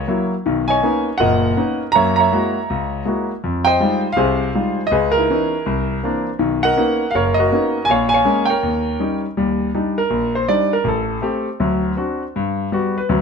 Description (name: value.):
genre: solo jazz.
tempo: 161 BPM.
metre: 4/4.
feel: swing 65% on 8ths.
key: unclear.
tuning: A4 = 442 Hz.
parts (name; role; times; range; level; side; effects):
warm concert grand piano; solo; 0.0-13.2 s; F#1 to Bb5; -16 LUFS; equal; none.
room: moderate studio reverb, RT60 0.8 s.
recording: none.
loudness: -16 LUFS.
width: side -6 dB against mid.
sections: 0.0-9.4 A section; 9.4-13.2 B section.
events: grand piano solo 9.4-13.2.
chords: 0.4 Bmaj9; 1.9 Gb9; 3.4 Fm9; 4.9 Dbm9; 5.7 C9; 6.4 Bmaj9; 7.9 Bbm7; 8.6 Eb7; 9.4 Ebmaj7; 10.8 Am7; 11.6 D7; 12.3 Gmaj7.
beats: 0.07 | 0.44 0.82 1.19 1.56 | 1.93 2.31 2.68 3.05 | 3.42 3.79 4.17 4.54 | 4.91 5.28 5.65 6.02 | 6.39 6.76 7.14 7.51 | 7.88 8.25 8.62 8.99 | 9.36 9.73 10.11 10.48 | 10.85 11.22 11.59 11.96 | 12.34 12.71 13.08.